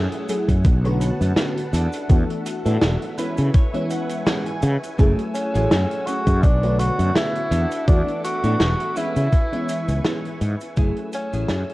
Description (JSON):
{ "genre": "vaporwave", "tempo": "83 BPM", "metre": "4/4", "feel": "swing 55% on 16ths", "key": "F# minor", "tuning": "A4 = 440 Hz", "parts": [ { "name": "FM electric piano with soft pad layer", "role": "accompaniment", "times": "0.0-11.7 s", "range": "D3 to C#5", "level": "-27 LUFS", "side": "left 1 dB", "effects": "phaser, ensemble chorus, tape echo" }, { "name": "soft string machine", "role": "sustained chords", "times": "0.0-11.7 s", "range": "A3 to E6", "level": "-34 LUFS", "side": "equal", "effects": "ensemble chorus" }, { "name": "clean electric guitar", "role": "riff", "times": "0.0-11.6 s", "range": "A3 to G#5", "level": "-33 LUFS", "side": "right 1 dB", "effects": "wide subtle chorus, tape echo" }, { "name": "fretless electric bass", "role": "bass", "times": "0.0-11.6 s", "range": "E1 to C#3", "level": "-20 LUFS", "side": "equal", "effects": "tube saturation" }, { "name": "natural country drum kit", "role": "drums", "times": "0.1-11.7 s", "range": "cabasa, hi-hat, snare drum", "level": "-24 LUFS", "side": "equal", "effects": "none" }, { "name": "electronic kick drum", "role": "drums", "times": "0.5-10.9 s", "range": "none", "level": "-16 LUFS", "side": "equal", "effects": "none" }, { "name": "breathy tenor saxophone", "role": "melody", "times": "5.3-11.7 s", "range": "C#4 to F#4", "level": "-25 LUFS", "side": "equal", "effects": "tape echo" } ], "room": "light reverb, small room ambience", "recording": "worn, warbling old tape, cassette tape, warbly pitch drift", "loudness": "-18 LUFS", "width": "side -19 dB against mid", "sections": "0.0-11.7 A section", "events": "clean electric guitar fill 2.8-5.0; fade-out 8.8-11.7", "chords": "0.0 F#m9; 0.7 Bm7; 1.7 E9sus4; 3.2 C#m7; 5.0 F#m9; 6.4 Bm7; 7.5 E9sus4; 9.0 C#m7; 10.8 F#m9" }